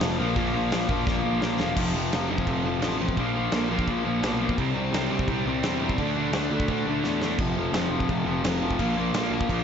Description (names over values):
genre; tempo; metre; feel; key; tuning
punk rock; 171 BPM; 4/4; straight; F major; A4 = 440 Hz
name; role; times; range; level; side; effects
crunchy overdriven guitar; riff; 0.0-9.6 s; F2 to D4; -29 LUFS; right 13 dB; none
distorted electric guitar; riff; 0.0-9.6 s; F2 to D4; -27 LUFS; left 9 dB; distortion
fuzz picked electric bass; bass; 0.0-9.6 s; E1 to E2; -31 LUFS; right 1 dB; overdrive
big rock drum kit; drums; 0.0-9.6 s; crash cymbal, hi-hat, kick drum, snare drum, splash cymbal; -29 LUFS; right 1 dB; none
room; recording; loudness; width
light reverb; nothing above 7.7 kHz; -23 LUFS; side -7 dB against mid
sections
0.0-1.8 A section; 1.8-9.6 B section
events
drum fill 1.1-1.8, 7.0-7.4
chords
0.2 Bb5; 1.8 F; 3.2 Bb5; 4.6 C; 6.0 D5; 7.4 F5; 8.8 Bb5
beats
0.01 | 0.36 0.71 1.06 1.41 | 1.76 2.12 2.47 2.82 | 3.17 3.52 3.87 4.22 | 4.58 4.93 5.28 5.63 | 5.98 6.33 6.68 7.03 | 7.38 7.74 8.09 8.44 | 8.79 9.14 9.49